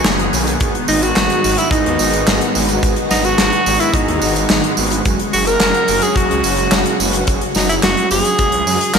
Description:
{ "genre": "synthwave", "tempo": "108 BPM", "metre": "4/4", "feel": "straight", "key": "unclear", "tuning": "A4 = 439 Hz", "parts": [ { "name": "warm tenor saxophone", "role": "melody", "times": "0.0-9.0 s", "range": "D#4 to A#4", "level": "-19 LUFS", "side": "equal", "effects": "ping-pong delay" }, { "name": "soft synth bell", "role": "second line", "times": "0.0-9.0 s", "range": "D#4 to A#4", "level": "-24 LUFS", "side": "equal", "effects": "none" }, { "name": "lush unison pad", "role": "sustained chords", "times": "0.0-9.0 s", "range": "C#3 to G#4", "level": "-21 LUFS", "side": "equal", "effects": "chorus, phaser, sidechain pumping" }, { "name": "huge arena drum kit", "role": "drums", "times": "0.0-9.0 s", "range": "handclaps, hi-hat, snare drum, tambourine", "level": "-17 LUFS", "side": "equal", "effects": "gated reverb" }, { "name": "wide detuned saw bass", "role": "bass", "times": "0.1-9.0 s", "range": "F#1 to F#2", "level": "-22 LUFS", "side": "equal", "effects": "chorus, tube saturation, sidechain pumping" }, { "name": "mellow synth brass", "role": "stabs", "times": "0.6-9.0 s", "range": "G#2 to B4", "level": "-24 LUFS", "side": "right 4 dB", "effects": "chorus, ping-pong delay" }, { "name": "kick drum", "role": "drums", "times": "0.6-8.5 s", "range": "none", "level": "-22 LUFS", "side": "equal", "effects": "none" } ], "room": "moderate lush hall reverb, RT60 1.7 s", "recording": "bright 1980s-style digital production", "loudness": "-12 LUFS", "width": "side -6 dB against mid", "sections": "0.0-9.0 A section", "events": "none", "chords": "0.0 Bmaj7; 0.6 G#m7; 5.1 F#sus2", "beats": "0.05 | 0.61 1.17 1.72 2.28 | 2.83 3.39 3.94 4.50 | 5.05 5.61 6.17 6.72 | 7.28 7.83 8.39 8.94" }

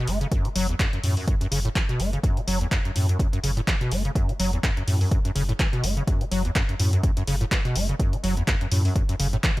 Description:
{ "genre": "acid house", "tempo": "125 BPM", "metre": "4/4", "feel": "swing 56% on 16ths", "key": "F# minor", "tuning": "A4 = 442 Hz", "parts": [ { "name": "acid bass, square", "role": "riff", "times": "0.0-9.6 s", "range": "E2 to A3", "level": "-26 LUFS", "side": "equal", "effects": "tube saturation, ensemble chorus" }, { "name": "round analog bass", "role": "bass", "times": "0.1-9.4 s", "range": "F#1 to F#2", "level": "-24 LUFS", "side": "equal", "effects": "sidechain pumping" }, { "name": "punchy analog drum machine", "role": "drums", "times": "0.1-9.6 s", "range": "handclaps, hi-hat", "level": "-29 LUFS", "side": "equal", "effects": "none" }, { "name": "electronic kick drum", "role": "drums", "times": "0.3-9.5 s", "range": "none", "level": "-24 LUFS", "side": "equal", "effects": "none" } ], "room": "little or no reverb", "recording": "none", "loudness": "-21 LUFS", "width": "side -18 dB against mid", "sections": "0.0-9.6 A section", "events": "none", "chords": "0.0 F#m", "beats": "| 0.32 0.80 1.28 1.76 | 2.24 2.72 3.20 3.68 | 4.16 4.64 5.12 5.60 | 6.08 6.56 7.04 7.52 | 8.00 8.48 8.96 9.44" }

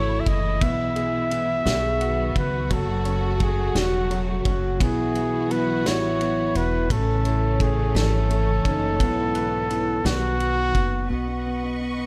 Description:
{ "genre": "six-eight pop ballad", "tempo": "57 BPM (dotted quarters)", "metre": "6/8", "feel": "straight", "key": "unclear", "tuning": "A4 = 440 Hz", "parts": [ { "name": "warm flugelhorn", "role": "melody", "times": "0.0-11.8 s", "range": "F#4 to E5", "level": "-29 LUFS", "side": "equal", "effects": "tape echo" }, { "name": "dark French horn section", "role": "second line", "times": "0.0-10.7 s", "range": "C#4 to G#4", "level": "-32 LUFS", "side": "equal", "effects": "none" }, { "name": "clear upright piano", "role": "accompaniment", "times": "0.0-12.1 s", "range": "E3 to B4", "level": "-32 LUFS", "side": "equal", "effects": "none" }, { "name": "warm studio string section", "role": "sustained chords", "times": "0.0-12.1 s", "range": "G#2 to C#6", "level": "-33 LUFS", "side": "equal", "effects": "none" }, { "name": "upright bass", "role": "bass", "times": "0.0-12.1 s", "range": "E1 to C#2", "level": "-28 LUFS", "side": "equal", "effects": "none" }, { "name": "loose indie drum kit", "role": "drums", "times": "0.3-10.9 s", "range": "kick drum, ride cymbal, snare drum", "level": "-29 LUFS", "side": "equal", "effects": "none" } ], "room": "light reverb", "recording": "none", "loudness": "-23 LUFS", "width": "mono", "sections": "0.0-11.1 A section", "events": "none", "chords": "0.0 A; 0.6 E/B; 1.7 B; 2.7 F#m; 4.8 Bsus4; 6.9 A; 9.0 E/B; 10.0 B; 11.1 Badd9", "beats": "| 0.61 1.66 | 2.71 3.76 | 4.81 5.86 | 6.90 7.95 | 9.00 10.05 | 11.10" }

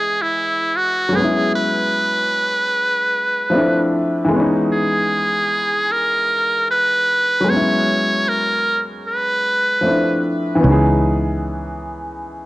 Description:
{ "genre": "hip hop", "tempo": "76 BPM", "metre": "4/4", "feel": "swing 61% on 16ths", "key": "unclear", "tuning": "A4 = 440 Hz", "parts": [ { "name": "trumpet with metal mute", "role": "melody", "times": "0.0-10.2 s", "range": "E4 to C#5", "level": "-18 LUFS", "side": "right 1 dB", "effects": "low-pass filter" }, { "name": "warm upright piano", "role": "accompaniment", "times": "0.0-12.5 s", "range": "E3 to D#5", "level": "-19 LUFS", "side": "left 1 dB", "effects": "low-pass filter, cassette tape" }, { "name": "fingered electric bass", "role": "bass", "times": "10.6-12.5 s", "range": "C#2", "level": "-18 LUFS", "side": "right 1 dB", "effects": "none" } ], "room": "light reverb, studio ambience", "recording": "home recording on cassette", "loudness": "-15 LUFS", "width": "side -18 dB against mid", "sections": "0.0-10.6 A section; 10.6-12.5 B section", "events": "none", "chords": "0.0 C#m7; 1.2 E6; 3.5 Dm7; 4.3 C#m7; 7.5 E6; 9.8 Dm7; 10.6 C#m7", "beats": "0.37 | 1.16 1.95 2.73 3.52 | 4.31 5.10 5.89 6.68 | 7.47 8.26 9.05 9.84 | 10.63 11.42 12.21" }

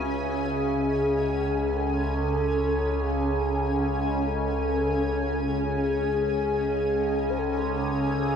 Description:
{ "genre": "dark ambient drone", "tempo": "48 BPM", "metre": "4/4", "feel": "straight", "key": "unclear", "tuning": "A4 = 440 Hz", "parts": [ { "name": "mellow horn-like synth lead", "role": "melody", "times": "0.0-8.4 s", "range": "G#4 to B#4", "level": "-28 LUFS", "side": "left 1 dB", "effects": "wide subtle chorus, tape echo" }, { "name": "granular cloud pad", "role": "sustained chords", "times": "0.0-8.4 s", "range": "C#4 to G#5", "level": "-29 LUFS", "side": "equal", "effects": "built-in reverb" }, { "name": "overtone-sweeping drone", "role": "drone", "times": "0.0-8.4 s", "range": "C#2 to C#3", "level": "-28 LUFS", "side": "equal", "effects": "chorus, built-in reverb" } ], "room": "wet huge ambient reverb, RT60 8.4 s", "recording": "cassette tape", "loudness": "-24 LUFS", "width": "side -7 dB against mid", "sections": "0.5-8.4 A section", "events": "none", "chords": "0.0 C#5", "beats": "| 0.50 1.75 3.00 4.25 | 5.50 6.75 8.00" }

